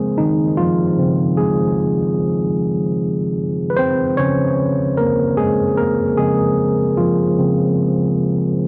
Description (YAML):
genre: R&B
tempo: 75 BPM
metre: 4/4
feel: straight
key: Db major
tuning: A4 = 440 Hz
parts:
  - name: tine electric piano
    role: solo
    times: 0.0-8.7 s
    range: Db3 to Db5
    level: -18 LUFS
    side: equal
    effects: cassette tape, analog delay
room: moderate spring reverb, RT60 1.6 s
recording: home recording on cassette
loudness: -17 LUFS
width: mono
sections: 0.0-8.7 A section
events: tine electric piano solo 0.0-8.7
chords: 0.0 Dbmaj9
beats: | 0.58 1.38 2.18 2.98 | 3.78 4.58 5.38 6.18 | 6.98 7.78 8.58